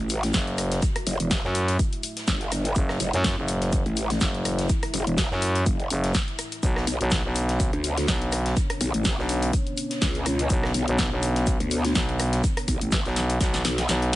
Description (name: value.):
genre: bass house.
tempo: 124 BPM.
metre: 4/4.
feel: swing 55% on 16ths.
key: F# minor.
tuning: A4 = 437 Hz.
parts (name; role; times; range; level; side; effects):
dark analog pad; sustained chords; 0.0-14.2 s; A3 to E5; -34 LUFS; left 2 dB; lush chorus, sidechain pumping.
growl bass; bass; 0.0-13.9 s; E1 to D2; -25 LUFS; equal; chorus, overdrive, sidechain pumping.
house drum kit; drums; 0.1-14.2 s; hi-hat, rim click, snare drum; -28 LUFS; left 1 dB; studio reverb.
oversized low-tuned drum kit; drums; 0.1-14.0 s; hi-hat, shaker, snare drum; -37 LUFS; right 1 dB; sidechain pumping on hats, high-pass filter on hats, studio reverb, high-pass filter on snare, sidechain pumping on perc, high-pass filter on perc, high-pass filter on room.
growling FM bass; bass; 0.3-14.2 s; F#1 to F#2; -24 LUFS; equal; tube saturation, sidechain pumping.
electronic kick drum; drums; 0.3-13.5 s; none; -26 LUFS; equal; studio reverb.
room: small room ambience.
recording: nothing above 11.0 kHz.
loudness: -22 LUFS.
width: side -16 dB against mid.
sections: 0.0-14.2 A section.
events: drum fill 13.4-14.2; kick drops out 13.9.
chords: 0.0 F#m7; 6.6 Bmadd9.